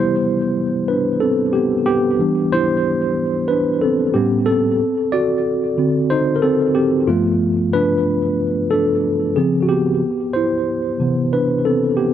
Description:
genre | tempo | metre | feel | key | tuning
R&B | 92 BPM | 4/4 | swing 55% on 16ths | C major | A4 = 439 Hz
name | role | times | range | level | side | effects
mellow tine electric piano | solo | 0.0-12.1 s | G2 to D5 | -15 LUFS | equal | medium stereo tremolo, tape echo
room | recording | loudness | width
moderate studio reverb, RT60 0.6 s | none | -15 LUFS | side -10 dB against mid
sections
0.0-12.1 A section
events
tine electric piano solo 0.0-12.1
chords
0.0 Cmaj9; 2.2 Em7; 4.1 A9; 4.8 D7b9; 7.1 G9; 9.4 Dbmaj7; 10.0 Cmaj9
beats
0.23 0.89 1.54 | 2.19 2.84 3.50 4.15 | 4.80 5.45 6.10 6.76 | 7.41 8.06 8.71 9.37 | 10.02 10.67 11.32 11.97

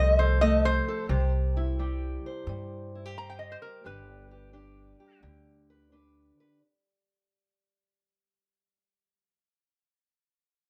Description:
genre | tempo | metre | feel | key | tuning
acoustic country blues, solo or duo | 87 BPM | 4/4 | swing 68% on 8ths | unclear | A4 = 440 Hz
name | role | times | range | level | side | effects
lap resonator guitar | melody | 0.0-5.2 s | Bb4 to Bb5 | -29 LUFS | equal | none
fingerpicked steel-string acoustic guitar | accompaniment | 0.0-9.4 s | C3 to C5 | -36 LUFS | equal | none
upright bass | bass | 0.0-6.3 s | G1 to G2 | -30 LUFS | equal | none
room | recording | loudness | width
light reverb | none | -27 LUFS | mono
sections
0.0-6.6 A section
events
fade-out 0.0-6.6; resonator guitar played with a steel bar solo 0.0-6.6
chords
0.0 F; 1.1 C; 3.9 G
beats
0.41 | 1.10 1.79 2.48 3.17 | 3.86 4.55 5.24 5.92

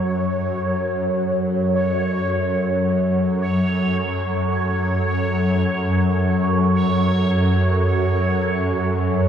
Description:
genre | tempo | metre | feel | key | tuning
dark ambient drone | free time | none | none | F# minor | A4 = 440 Hz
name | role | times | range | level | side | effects
deep dark ambient pad | sustained chords | 1.9-9.3 s | C#4 to G#5 | -32 LUFS | equal | chorus, built-in reverb
swarming drone | drone | 0.0-9.3 s | F#2 to F#3 | -19 LUFS | equal | built-in reverb
bubbling stepped-filter texture | texture | 0.0-9.3 s | C#5 | -24 LUFS | right 2 dB | chorus, built-in reverb
room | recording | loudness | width
wet cathedral reverb, RT60 6.2 s | in a vast, echoing space | -18 LUFS | side -8 dB against mid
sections
0.0-9.3 A section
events
fade-in on ambient pad 0.0-9.3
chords
0.0 F#m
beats
free time

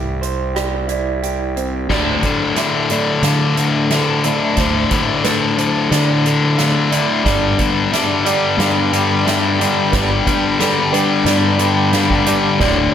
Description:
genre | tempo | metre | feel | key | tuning
post-rock | 90 BPM | 4/4 | straight | unclear | A4 = 440 Hz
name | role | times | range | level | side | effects
electric guitar through a small old amp | arpeggios | 0.0-12.9 s | D2 to C5 | -24 LUFS | right 1 dB | digital delay
felt-muted upright piano | arpeggios | 0.0-12.9 s | A4 to F5 | -26 LUFS | right 9 dB | digital delay
fuzz fingered electric bass | bass | 0.0-12.9 s | D1 to D3 | -20 LUFS | right 1 dB | overdrive
soft-mallet drum kit | drums | 0.2-12.8 s | crash cymbal, hi-hat, kick drum, rim click, snare drum | -23 LUFS | right 1 dB | none
shimmering ambient pad | sustained chords | 4.1-12.9 s | D5 to B5 | -29 LUFS | right 4 dB | none
cranked stack guitar | riff | 1.9-12.9 s | D2 to G3 | -16 LUFS | left 5 dB | overdrive
room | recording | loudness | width
light reverb, small room ambience | none | -14 LUFS | side -9 dB against mid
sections
0.0-1.9 A section; 1.9-12.9 B section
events
build-up 1.9-12.9; drum fill 1.9-12.9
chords
0.0 C; 1.9 Dmadd9; 7.3 G7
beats
0.55 1.23 | 1.90 2.57 3.24 3.91 | 4.58 5.25 5.92 6.59 | 7.26 7.93 8.60 9.27 | 9.93 10.60 11.27 11.94 | 12.61

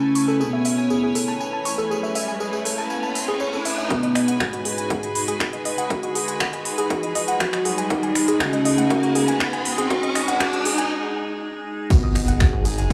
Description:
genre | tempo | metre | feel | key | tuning
melodic techno | 120 BPM | 4/4 | straight | G# phrygian | A4 = 440 Hz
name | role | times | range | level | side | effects
soft octave-layered synth lead | melody | 0.0-12.9 s | G#3 to D#4 | -25 LUFS | equal | chorus, phaser, tape echo
evolving wavetable pad | sustained chords | 0.0-12.9 s | G#3 to C#5 | -32 LUFS | equal | phaser, built-in reverb, sidechain pumping
woody wave-folded pluck | arpeggios | 0.0-12.9 s | F#4 to G#6 | -29 LUFS | equal | chorus, sidechain pumping, tape echo
riser | sound effects | 1.3-10.9 s | none | -32 LUFS | equal | none
clear studio string section | texture | 0.0-10.9 s | C#4 to G#5 | -34 LUFS | equal | sidechain pumping
techno drum kit | drums | 0.2-12.9 s | crash cymbal, finger snaps, hi-hat | -29 LUFS | equal | none
tambourine | percussion | 0.2-3.9, 11.9-12.9 s | none | -38 LUFS | equal | none
electronic kick drum | drums | 3.9-12.9 s | none | -24 LUFS | equal | high-pass filter on kick
tambourine and snare drum | drums | 11.9-12.9 s | none | -42 LUFS | equal | none
round analog bass | bass | 12.0-12.9 s | F#1 to G#1 | -26 LUFS | equal | sidechain pumping
room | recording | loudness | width
moderate concert hall reverb, RT60 2.2 s | dry, gritty hardware recording, small room reverb | -22 LUFS | mono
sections
0.0-3.9 A section; 3.9-11.9 B section; 11.9-12.9 C section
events
riser 1.3-3.9, 3.9-10.9; build-up 3.9-11.9; filter sweep on soft synth lead 3.9-11.9; break 10.9-11.9; drop 11.9-12.9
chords
0.0 Amaj7; 3.9 G#m7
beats
0.40 0.90 1.40 | 1.90 2.40 2.90 3.40 | 3.90 4.40 4.90 5.40 | 5.90 6.40 6.90 7.40 | 7.90 8.40 8.90 9.40 | 9.90 10.40 10.90 11.40 | 11.90 12.40 12.90

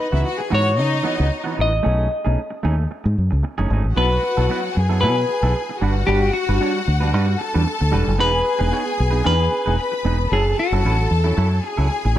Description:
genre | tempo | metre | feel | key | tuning
disco | 113 BPM | 4/4 | straight | unclear | A4 = 440 Hz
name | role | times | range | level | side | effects
clean electric guitar | melody | 0.0-11.1 s | F#4 to D#5 | -22 LUFS | left 2 dB | wide subtle chorus
clear studio string section | second line | 0.0-12.2 s | D#4 to B5 | -25 LUFS | left 2 dB | none
semi-hollow electric guitar | accompaniment | 0.0-12.2 s | E3 to C#5 | -26 LUFS | right 5 dB | spring reverb
fingered electric bass | bass | 0.1-12.2 s | E1 to C#3 | -18 LUFS | equal | none
room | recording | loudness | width
light reverb | dark, warm production | -17 LUFS | side -12 dB against mid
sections
0.0-4.0 A section; 4.0-12.2 B section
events
none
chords
0.0 C#m11; 1.8 B13; 4.0 B7sus4; 5.8 Gmaj7; 8.2 Emaj7; 10.3 F#m7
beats
0.26 0.79 1.31 | 1.84 2.37 2.90 3.43 | 3.96 4.49 5.02 5.55 | 6.08 6.61 7.14 7.67 | 8.20 8.73 9.26 9.79 | 10.32 10.85 11.38 11.91

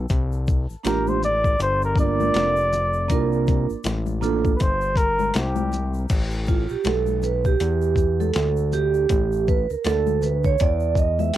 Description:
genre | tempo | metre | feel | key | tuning
hip hop, jazz-hop | 80 BPM | 4/4 | swing 60% on 16ths | A phrygian | A4 = 439 Hz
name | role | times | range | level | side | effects
fat analog bass | bass | 0.0-11.3 s | F1 to E2 | -24 LUFS | left 1 dB | none
boom bap sampler-style drum kit | drums | 0.1-11.4 s | crash cymbal, hi-hat, kick drum, shaker, snare drum | -22 LUFS | left 1 dB | cassette tape
egg shaker and congas | percussion | 0.1-11.4 s | none | -33 LUFS | left 11 dB | none
vibraphone with soft mallets | accompaniment | 0.8-11.4 s | Bb3 to E5 | -23 LUFS | right 8 dB | none
breathy flugelhorn | melody | 0.9-6.1 s | G4 to D5 | -24 LUFS | left 1 dB | plate reverb, analog delay
room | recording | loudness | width
light reverb | home recording on cassette | -19 LUFS | side -13 dB against mid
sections
0.0-6.1 A section; 6.1-11.4 A section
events
flugelhorn solo 0.0-6.1; vibraphone solo 6.1-11.4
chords
0.1 C9sus4; 6.1 A9sus4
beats
| 0.10 0.85 1.60 2.35 | 3.10 3.85 4.60 5.35 | 6.10 6.85 7.60 8.35 | 9.10 9.85 10.60 11.35

